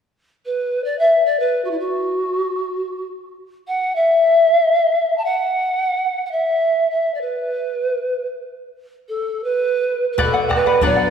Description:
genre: andean folk, Andean ensemble.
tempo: free time.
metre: none.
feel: none.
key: B minor pentatonic.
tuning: A4 = 440 Hz.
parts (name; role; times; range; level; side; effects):
polished pan flute; melody; 0.5-11.1 s; E4 to A5; -17 LUFS; equal; none.
charango; accompaniment; 10.2-11.1 s; B4 to F#5; -19 LUFS; left 2 dB; none.
flamenco guitar; accompaniment; 10.2-11.1 s; B2 to D4; -23 LUFS; left 4 dB; none.
bombo; percussion; 10.2-11.0 s; none; -23 LUFS; right 1 dB; none.
room: wet concert hall reverb, RT60 2.0 s.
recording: recorded in a church or concert hall.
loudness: -16 LUFS.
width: side -7 dB against mid.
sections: 0.0-10.2 A section.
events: none.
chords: 0.0 N.C.; 10.2 Bm.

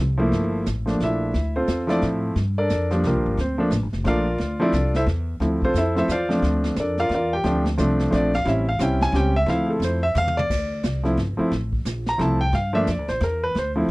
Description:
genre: jazz piano trio.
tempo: 177 BPM.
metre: 3/4.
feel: swing 62% on 8ths.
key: D minor.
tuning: A4 = 440 Hz.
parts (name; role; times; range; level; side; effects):
upright bass; bass; 0.0-13.9 s; F1 to A2; -24 LUFS; equal; none.
warm grand piano; melody; 0.2-13.9 s; F3 to Bb5; -22 LUFS; equal; none.
vintage brush drum kit; drums; 0.3-13.9 s; brushed snare drum, crash cymbal, hi-hat, kick drum, snare drum, toms; -30 LUFS; right 1 dB; none.
room: little or no reverb.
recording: dry, close 1970s-style studio recording.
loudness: -20 LUFS.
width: side -22 dB against mid.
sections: 0.0-10.5 A section; 10.5-13.9 A section.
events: grand piano solo 0.0-13.9; drum fill 10.2-10.5.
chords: 0.3 Gm9; 1.3 Dm9; 2.4 Gm9; 4.4 Dm9; 6.4 Bbmaj7; 8.5 A7#9; 9.5 Dm9; 12.5 Gm7.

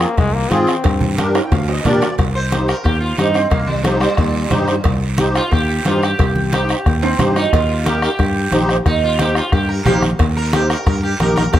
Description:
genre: latin, cumbia.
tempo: 180 BPM.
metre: 4/4.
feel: straight.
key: C minor.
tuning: A4 = 440 Hz.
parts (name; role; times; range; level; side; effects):
brilliant trombone; second line; 0.0-1.2 s; Ab3 to C4; -22 LUFS; left 4 dB; none.
musette accordion; accompaniment; 0.0-11.4 s; C4 to Bb5; -21 LUFS; equal; none.
fingered electric bass; bass; 0.0-11.6 s; Bb1 to Bb2; -19 LUFS; equal; none.
bombo; percussion; 0.0-11.6 s; none; -20 LUFS; left 2 dB; none.
guiro; percussion; 0.0-11.6 s; none; -30 LUFS; right 6 dB; none.
cowbell and timbales; percussion; 0.2-11.6 s; none; -27 LUFS; right 6 dB; none.
congas; percussion; 0.3-11.6 s; none; -23 LUFS; equal; none.
sitar; melody; 2.4-11.6 s; Bb2 to C5; -20 LUFS; right 2 dB; none.
room: light reverb.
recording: none.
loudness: -14 LUFS.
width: side -12 dB against mid.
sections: 0.0-2.2 A section; 2.2-11.6 B section.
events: drum fill 0.8-2.2, 7.0-7.5; accordion fill 1.2-2.2; sitar solo 2.2-11.6.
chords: 0.0 Fm; 0.8 Gm; 2.2 Cm; 7.5 Eb.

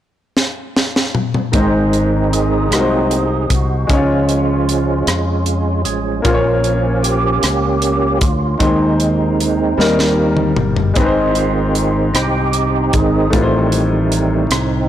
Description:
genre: slow gospel.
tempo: 51 BPM (dotted quarters).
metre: 6/8.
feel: straight.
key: Ab major.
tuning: A4 = 441 Hz.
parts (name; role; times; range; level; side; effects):
tight funk drum kit; drums; 0.4-14.7 s; hi-hat, kick drum, rim click, snare drum, toms; -18 LUFS; equal; none.
clear baby grand piano; accompaniment; 1.5-14.9 s; Ab2 to Db5; -18 LUFS; left 2 dB; none.
percussive tonewheel organ; sustained chords; 1.5-14.9 s; Eb3 to Ab4; -18 LUFS; right 3 dB; slow rotary speaker, overdrive, chorus vibrato.
fingered electric bass; bass; 1.5-14.9 s; G1 to F2; -19 LUFS; equal; tube saturation.
room: light reverb.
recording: blown-out, overdriven recording, overdrive.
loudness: -13 LUFS.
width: side -11 dB against mid.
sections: 0.0-1.5 A section; 1.5-14.9 B section.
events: drum fill 0.4-1.5, 9.8-11.0; tonewheel organ solo 1.5-14.9.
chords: 0.0 N.C.; 1.5 Ab; 2.7 Ab7/C; 3.9 Db; 6.3 Bbm; 8.6 Ab/Eb; 9.8 Eb; 11.0 Ab; 13.3 F7/A.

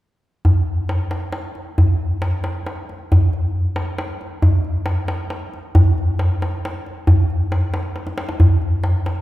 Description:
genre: persian.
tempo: 91 BPM (dotted quarters).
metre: 6/8.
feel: straight.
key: none.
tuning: none.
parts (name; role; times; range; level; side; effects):
tombak; percussion; 0.4-9.2 s; none; -16 LUFS; equal; none.
room: wet concert hall reverb, RT60 2.0 s.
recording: recorded in a church or concert hall.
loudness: -17 LUFS.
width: side -16 dB against mid.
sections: 0.5-3.1 A section; 3.1-9.2 B section.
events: drum fill 8.0-8.4.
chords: none.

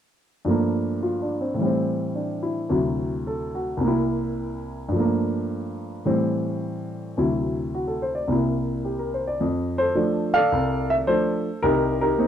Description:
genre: solo jazz.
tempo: 108 BPM.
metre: 4/4.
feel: swing 69% on 8ths.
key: F major.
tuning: A4 = 442 Hz.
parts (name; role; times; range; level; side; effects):
warm baby grand piano; solo; 0.4-12.3 s; C2 to F5; -22 LUFS; equal; none.
room: small room ambience.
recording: dry, close 1970s-style studio recording.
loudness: -22 LUFS.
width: side -9 dB against mid.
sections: 0.5-9.4 A section; 9.4-12.3 B section.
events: none.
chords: 0.5 Gm9; 1.6 Am7; 2.7 D9; 3.8 C7; 4.9 Gm9; 6.0 Am7; 7.2 D9; 8.3 C7; 9.4 F6; 11.6 Cm7.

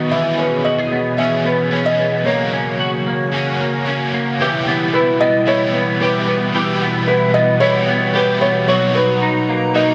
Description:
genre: dream pop.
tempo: 112 BPM.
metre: 4/4.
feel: straight.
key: unclear.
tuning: A4 = 441 Hz.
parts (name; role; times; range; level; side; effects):
felt-muted upright piano; melody; 0.0-9.9 s; B4 to E5; -20 LUFS; equal; shimmer reverb, digital delay.
overdriven semi-hollow guitar; accompaniment; 0.0-9.9 s; F#2 to G#4; -25 LUFS; equal; tremolo, analog chorus, shimmer reverb.
warbly tape-like pad; sustained chords; 0.0-9.9 s; B2 to A#5; -23 LUFS; equal; chorus, built-in reverb, shimmer reverb.
semi-hollow electric guitar; arpeggios; 0.0-9.9 s; E3 to G#4; -22 LUFS; equal; ensemble chorus, shimmer reverb, digital delay.
room: wet concert hall reverb, RT60 1.9 s.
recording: none.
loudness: -17 LUFS.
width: mono.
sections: 0.0-4.4 A section; 4.4-9.9 B section.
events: none.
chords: 0.1 C#m7/B; 2.3 F#; 4.4 Em/B; 8.7 Bmaj7.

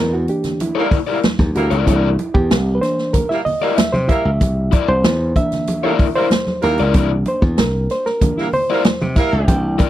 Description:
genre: funk.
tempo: 95 BPM.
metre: 4/4.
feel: straight.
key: C mixolydian.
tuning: A4 = 440 Hz.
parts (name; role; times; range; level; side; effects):
bright reed electric piano; stabs; 0.0-9.9 s; E3 to G5; -20 LUFS; right 1 dB; overdrive.
slap bass; bass; 0.0-9.8 s; C2 to C3; -18 LUFS; equal; none.
swinging big-band drum kit; drums; 0.3-9.9 s; hi-hat, kick drum, snare drum; -16 LUFS; equal; none.
congas; percussion; 0.4-9.9 s; none; -26 LUFS; right 2 dB; none.
dark horn section; second line; 0.8-9.6 s; G3 to Bb4; -20 LUFS; right 2 dB; none.
raw garage guitar; accompaniment; 0.8-9.9 s; E4 to D5; -19 LUFS; left 8 dB; overdrive.
room: little or no reverb.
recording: dry, close 1970s-style studio recording, lossy compression artefacts.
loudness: -14 LUFS.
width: side -13 dB against mid.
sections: 0.0-9.9 A section.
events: reed electric piano solo 0.0-9.9.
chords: 0.0 C9.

